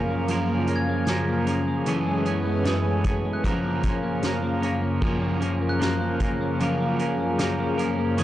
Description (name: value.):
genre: dream pop.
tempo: 76 BPM.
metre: 4/4.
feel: straight.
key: F# major.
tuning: A4 = 440 Hz.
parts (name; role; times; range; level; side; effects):
electric guitar at the edge of break-up; accompaniment; 0.0-8.2 s; F#2 to A#4; -29 LUFS; right 3 dB; tremolo, wide subtle chorus.
lush unison pad; sustained chords; 0.0-8.2 s; F#2 to G#4; -26 LUFS; equal; chorus, phaser.
clean electric guitar; arpeggios; 0.0-8.2 s; E3 to C#4; -28 LUFS; left 2 dB; ensemble chorus, tape echo.
soft-mallet drum kit; drums; 0.3-8.2 s; crash cymbal, hi-hat, kick drum, snare drum; -30 LUFS; equal; none.
glockenspiel with soft plastic mallets; texture; 0.8-8.2 s; F#6 to G#6; -38 LUFS; equal; tape echo.
room: studio ambience.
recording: transformer saturation, cassette tape, nothing above 10.6 kHz.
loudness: -22 LUFS.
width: side -13 dB against mid.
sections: 0.0-5.0 A section; 5.0-8.2 A section.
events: none.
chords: 0.0 F#maj7; 1.9 Amaj7/F#; 3.4 F#maj7.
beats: 0.28 1.07 | 1.86 2.65 3.44 4.23 | 5.02 5.81 6.60 7.39 | 8.18.